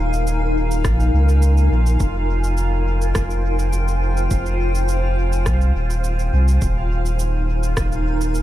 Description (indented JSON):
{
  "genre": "ambient dub",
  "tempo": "104 BPM",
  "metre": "4/4",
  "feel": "swing 53% on 16ths",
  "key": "F minor",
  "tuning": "A4 = 440 Hz",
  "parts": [
    { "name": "granular cloud pad", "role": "sustained chords", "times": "0.0-8.4 s", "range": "Eb4 to Ab5", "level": "-25 LUFS", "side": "left 1 dB", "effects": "built-in reverb" },
    { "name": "warm sub bass", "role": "bass", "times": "0.0-8.4 s", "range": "Eb1 to Db2", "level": "-18 LUFS", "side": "equal", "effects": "tube saturation" },
    { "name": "bubbling stepped-filter texture", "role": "texture", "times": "0.0-8.4 s", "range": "F4 to F5", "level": "-31 LUFS", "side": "right 2 dB", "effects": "chorus, built-in reverb" },
    { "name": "electronic shaker and rim click", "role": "drums", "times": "0.1-8.4 s", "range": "none", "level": "-31 LUFS", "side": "right 2 dB", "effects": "studio reverb, dub echo" },
    { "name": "electronic kick drum", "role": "drums", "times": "0.8-7.9 s", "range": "none", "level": "-24 LUFS", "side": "equal", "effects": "overdrive, studio reverb" }
  ],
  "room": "little or no reverb",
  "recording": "none",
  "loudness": "-16 LUFS",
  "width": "side -14 dB against mid",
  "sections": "0.0-8.4 A section",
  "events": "none",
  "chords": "0.0 Eb7sus4; 2.0 Fm7; 6.6 Ebsus4"
}